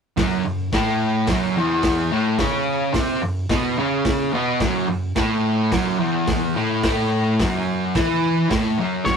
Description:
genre	garage rock duo or trio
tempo	108 BPM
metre	4/4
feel	straight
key	unclear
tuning	A4 = 440 Hz
part	fuzz guitar	riff	0.2-9.2 s	E2 to E4	-19 LUFS	equal	distortion
part	raw garage drum kit	drums	0.2-9.2 s	hi-hat, kick drum, snare drum	-25 LUFS	equal	none
part	octave-fuzz lead guitar	melody	9.1-9.2 s	C#5	-20 LUFS	left 1 dB	distortion
room	moderate booth ambience, RT60 0.2 s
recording	rough rehearsal-room recording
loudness	-18 LUFS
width	side -6 dB against mid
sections	0.2-9.1 A section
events	none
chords	0.2 F#5

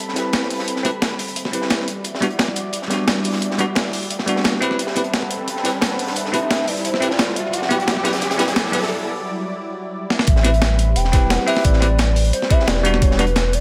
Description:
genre	liquid drum and bass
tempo	175 BPM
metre	4/4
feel	straight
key	A dorian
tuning	A4 = 441 Hz
part	hollow clarinet-like synth lead	melody	0.0-13.6 s	B4 to G5	-28 LUFS	equal	chorus, cassette tape, delay
part	lush unison pad	sustained chords	0.0-13.6 s	F#3 to B5	-30 LUFS	equal	chorus
part	crunchy breakbeat drum kit	drums	0.0-13.6 s	hi-hat, snare drum	-30 LUFS	equal	high-pass filter on hats, high-pass filter on snare, high-pass filter on room
part	riser	sound effects	1.5-8.9 s	none	-31 LUFS	equal	none
part	bell-like tine electric piano	accompaniment	0.1-13.2 s	G3 to B4	-25 LUFS	equal	none
part	breakbeat sampler-style drum kit	drums	0.2-13.6 s	hi-hat, snare drum	-24 LUFS	equal	none
part	warm sub bass	bass	10.3-13.6 s	E1 to A1	-20 LUFS	equal	tube saturation
part	electronic kick drum	drums	10.3-13.1 s	none	-18 LUFS	equal	none
room	light reverb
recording	none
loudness	-19 LUFS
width	mono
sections	0.0-10.3 A section; 10.3-13.6 B section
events	build-up 0.0-10.3; filter sweep on soft synth lead 0.0-10.3; riser 1.5-8.9; break 8.9-10.3; drum fill 10.1; drop 10.3-13.6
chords	0.0 Am9; 1.9 Em9; 4.8 Am9; 7.4 Em9; 10.3 Am9; 12.8 Em9

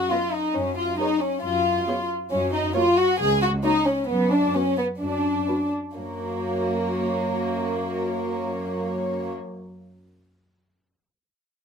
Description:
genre	quick classical-period movement for string orchestra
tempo	122-138 BPM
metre	4/4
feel	rubato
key	F# major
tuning	A4 = 436 Hz
part	warm symphonic violin section	second line	0.0-9.3 s	A#3 to G#4	-23 LUFS	left 1 dB	none
part	warm symphonic cello section	bass	0.0-9.3 s	C#2 to F#2	-30 LUFS	equal	none
part	warm symphonic violin section	melody	0.1-9.3 s	B4 to D#5	-32 LUFS	left 1 dB	none
part	dark symphonic viola section	accompaniment	0.1-9.3 s	A#3 to B4	-31 LUFS	right 1 dB	none
room	light reverb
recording	close, detailed microphones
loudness	-22 LUFS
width	side -6 dB against mid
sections	0.0-6.0 A section; 6.0-9.8 B section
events	slowing down 1.4-6.0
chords	0.0 B; 0.6 C#/F#; 2.3 F#; 4.1 Bm/F#; 6.0 F#

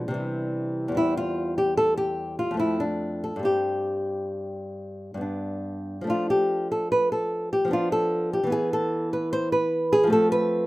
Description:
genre	classical, baroque-style dance for nylon-string guitar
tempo	67-76 BPM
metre	3/4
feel	rubato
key	C major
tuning	A4 = 440 Hz
part	nylon-string guitar	solo	0.0-10.7 s	E2 to C5	-23 LUFS	equal	none
room	light reverb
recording	rough home demo mix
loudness	-23 LUFS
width	side -18 dB against mid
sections	0.0-10.7 A section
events	none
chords	0.2 C; 1.0 C/E; 2.6 Dm7/F; 3.5 Gsus4; 5.2 G; 6.1 Dm/F; 7.7 Bm7b5/F; 8.5 E5; 10.1 F

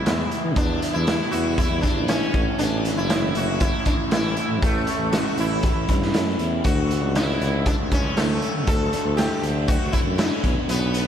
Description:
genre	psychedelic rock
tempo	118 BPM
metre	4/4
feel	straight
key	unclear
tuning	A4 = 440 Hz
part	sitar	melody	0.0-11.1 s	A3 to A4	-26 LUFS	equal	ping-pong delay
part	raw garage guitar	riff	0.0-11.1 s	A2 to E4	-27 LUFS	equal	overdrive, phaser
part	warm tuba	bass	0.0-11.1 s	F#1 to E3	-25 LUFS	equal	none
part	raw garage drum kit	drums	0.1-11.1 s	hi-hat, kick drum, snare drum	-24 LUFS	equal	none
room	moderate lush hall reverb, RT60 2.4 s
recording	dreamy mix soaked in reverb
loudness	-19 LUFS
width	side -9 dB against mid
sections	0.0-11.1 A section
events	none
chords	0.0 Em; 2.3 A; 6.7 Dmaj7; 10.4 Bm

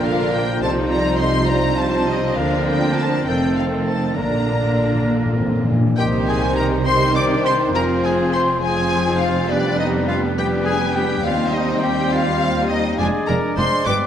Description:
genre	quick classical-period movement for symphony orchestra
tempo	68 BPM (dotted quarters)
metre	6/8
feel	straight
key	Bb major, C minor from 6.0 s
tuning	A4 = 441 Hz
part	rich studio violin section	melody	0.0-13.9 s	D5 to D6	-25 LUFS	left 4 dB	none
part	bright clarinet	second line	0.0-14.1 s	C4 to D5	-28 LUFS	left 2 dB	none
part	mellow hollow concert flute	second line	0.0-14.1 s	G4 to D6	-26 LUFS	left 1 dB	none
part	rich studio violin section	second line	0.0-14.0 s	Bb3 to C5	-29 LUFS	left 2 dB	none
part	warm oboe	second line	0.0-14.1 s	A4 to D5	-28 LUFS	right 2 dB	none
part	clear studio viola section	accompaniment	0.0-13.9 s	D3 to Eb4	-26 LUFS	right 1 dB	none
part	mellow bassoon	accompaniment	0.0-14.1 s	D3 to Bb3	-27 LUFS	right 1 dB	none
part	mellow French horn section	sustained chords	0.0-14.1 s	F3 to Eb4	-25 LUFS	left 2 dB	none
part	clear studio double bass section	bass	0.0-13.9 s	F1 to Eb2	-26 LUFS	right 3 dB	none
part	warm studio cello section	bass	0.0-13.9 s	Eb2 to D3	-25 LUFS	right 2 dB	none
part	timpani	percussion	4.2-5.9 s	Bb2	-21 LUFS	left 1 dB	none
room	wet concert hall reverb, RT60 2.1 s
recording	none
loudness	-16 LUFS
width	side -9 dB against mid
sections	0.0-6.0 A section; 6.0-14.1 B section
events	timpani fill 4.2-6.0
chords	0.0 Bb; 0.6 F7/C; 2.4 Bb/D; 3.3 F; 4.2 Bb; 6.0 Cm; 7.7 Fm; 9.5 G7/F; 11.2 Cm/Eb; 13.0 Ddim/F

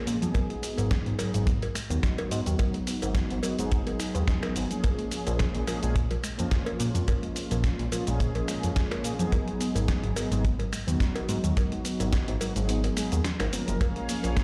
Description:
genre	nu-disco, nu disco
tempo	107 BPM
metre	4/4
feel	swing 54% on 16ths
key	G# dorian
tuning	A4 = 445 Hz
part	mellow synth brass	accompaniment	0.0-14.4 s	E#3 to A#4	-34 LUFS	equal	chorus, vintage 12-bit sampler grit, dub echo
part	soft round pluck	arpeggios	0.1-14.4 s	E#3 to B4	-39 LUFS	equal	none
part	fat analog bass	bass	0.1-14.4 s	F#1 to A#2	-31 LUFS	equal	none
part	dusty soul sampler-style drum kit	drums	0.1-14.4 s	cabasa, finger snaps, hi-hat, snare drum	-38 LUFS	equal	none
part	kick drum	drums	0.3-14.4 s	none	-28 LUFS	equal	none
part	cowbell	percussion	0.3-14.3 s	none	-40 LUFS	equal	none
part	muted studio string section	sustained chords	13.8-14.4 s	A#3 to E#5	-39 LUFS	equal	sidechain pumping
room	light reverb, small room ambience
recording	played on a big sound system in a bare room, large studio reverb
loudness	-28 LUFS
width	mono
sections	0.0-14.4 A section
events	kick drops out 12.7-13.8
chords	0.4 G#m7; 4.8 A#m7; 9.3 G#m7; 13.8 A#m7

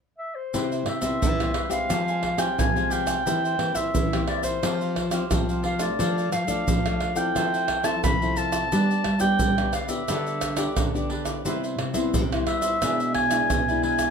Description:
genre	samba and choro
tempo	88 BPM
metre	4/4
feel	straight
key	C major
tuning	A4 = 440 Hz
part	dark clarinet	melody	0.2-14.1 s	C5 to B5	-26 LUFS	equal	none
part	cavaquinho	accompaniment	0.5-14.1 s	D4 to Ab5	-33 LUFS	right 4 dB	none
part	nylon-string guitar	accompaniment	0.5-14.1 s	G2 to A4	-30 LUFS	left 7 dB	none
part	nylon-string guitar	bass	0.5-14.1 s	B2 to C4	-28 LUFS	right 1 dB	none
part	tube shaker, surdo, pandeiro and tamborim	percussion	0.5-14.1 s	none	-27 LUFS	right 2 dB	none
room	moderate studio ambience, RT60 0.5 s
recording	none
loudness	-22 LUFS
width	side -6 dB against mid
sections	0.5-14.1 A section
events	stop 0.0-0.5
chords	0.0 C; 0.5 Cmaj7; 1.9 Fmadd9; 3.3 C7/E; 4.6 Fsus2; 6.0 Dm/F; 7.4 Fmaj7; 8.7 G; 11.5 Cmaj7; 12.8 E7/B

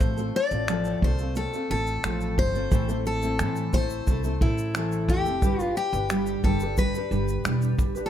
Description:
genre	acoustic pop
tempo	89 BPM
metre	4/4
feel	straight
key	unclear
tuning	A4 = 440 Hz
part	picked steel-string acoustic guitar	melody	0.0-8.1 s	E4 to D5	-29 LUFS	left 2 dB	digital delay
part	nylon-string guitar	accompaniment	0.0-8.1 s	A2 to B4	-29 LUFS	equal	double-tracked left and right
part	upright bass	bass	0.0-8.1 s	E1 to A2	-29 LUFS	equal	none
part	vintage brush drum kit	drums	0.0-8.1 s	finger snaps, kick drum, shaker	-26 LUFS	equal	none
part	egg shaker	percussion	2.7-8.1 s	none	-47 LUFS	left 11 dB	none
room	light reverb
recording	none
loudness	-23 LUFS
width	side -10 dB against mid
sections	0.0-8.1 A section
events	none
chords	0.0 F/A; 2.7 Am; 5.4 G

